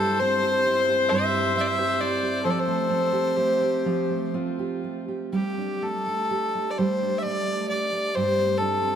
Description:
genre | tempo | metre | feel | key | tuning
celtic folk, Celtic slow air | 60-68 BPM | 3/4 | rubato | unclear | A4 = 440 Hz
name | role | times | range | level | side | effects
clear fiddle | melody | 0.0-9.0 s | G4 to E5 | -24 LUFS | left 1 dB | none
clear viola | second line | 0.0-5.3 s | F4 to C5 | -28 LUFS | left 5 dB | none
fingerpicked steel-string acoustic guitar | accompaniment | 0.0-9.0 s | G2 to G4 | -27 LUFS | right 4 dB | none
room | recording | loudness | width
wet church reverb, RT60 3.4 s | none | -22 LUFS | side -8 dB against mid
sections
0.0-5.3 A section; 5.3-9.0 B section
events
none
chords
0.0 C/G; 2.4 Fadd9; 5.3 Gsus2; 8.2 Csus2/G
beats
0.65 1.55 | 2.45 3.37 4.34 | 5.33 6.31 7.25 | 8.15

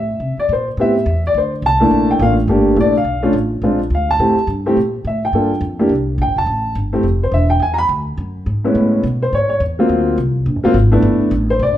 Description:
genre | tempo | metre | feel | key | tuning
jazz | 211 BPM | 4/4 | swing 59% on 8ths | unclear | A4 = 441 Hz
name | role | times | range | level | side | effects
warm upright piano | melody | 0.0-11.8 s | A2 to B5 | -15 LUFS | equal | none
upright bass | bass | 0.0-11.8 s | D1 to C3 | -18 LUFS | equal | none
room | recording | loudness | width
wet large studio reverb, RT60 1.1 s | minimal, uncompressed stereo recording | -13 LUFS | side -12 dB against mid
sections
0.0-8.8 A section; 8.8-11.8 B section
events
none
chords
0.0 Fmaj7 (rootless); 0.8 Am7; 1.3 D5; 1.9 Gm7; 3.1 B7(b5, no3); 3.6 Bb9; 4.2 Am7; 5.3 Gm9; 5.9 C7; 6.5 Fmaj7; 7.6 E9; 8.8 Amaj9; 9.9 D7alt; 11.0 G69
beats
0.20 0.49 | 0.78 1.06 1.35 1.63 | 1.92 2.20 2.48 2.77 | 3.06 3.34 3.62 3.91 | 4.19 4.48 4.76 5.05 | 5.33 5.62 5.90 6.19 | 6.47 6.76 7.04 7.33 | 7.61 7.90 8.18 8.47 | 8.75 9.04 9.32 9.61 | 9.89 10.18 10.46 10.75 | 11.03 11.32 11.60

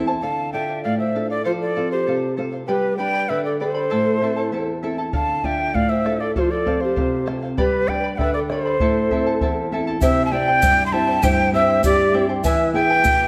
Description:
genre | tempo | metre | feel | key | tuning
andean folk, Andean ensemble | 98 BPM | 2/4 | straight | unclear | A4 = 439 Hz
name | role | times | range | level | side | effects
charango | accompaniment | 0.0-13.3 s | E4 to B5 | -31 LUFS | equal | none
flamenco guitar | accompaniment | 0.0-13.3 s | E2 to D5 | -27 LUFS | equal | none
breathy quena | melody | 0.2-13.3 s | B4 to C6 | -23 LUFS | equal | none
breathy bright pan flute | second line | 0.2-13.3 s | F4 to G5 | -28 LUFS | equal | none
bombo | percussion | 5.1-13.2 s | none | -28 LUFS | equal | none
egg shaker | percussion | 10.0-13.2 s | none | -39 LUFS | equal | none
room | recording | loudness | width
wet recital hall reverb, RT60 1.4 s | none | -20 LUFS | mono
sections
0.2-10.0 A section; 10.0-13.3 B section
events
none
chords
0.2 Dm; 1.5 F; 2.7 G; 3.9 Am; 5.1 Dm; 6.4 F; 7.6 G; 8.8 Am; 10.0 C; 12.4 E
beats
| 0.23 0.84 | 1.45 2.07 | 2.68 3.29 | 3.90 4.52 | 5.13 5.74 | 6.36 6.97 | 7.58 8.19 | 8.80 9.41 | 10.02 10.62 | 11.23 11.84 | 12.44 13.05

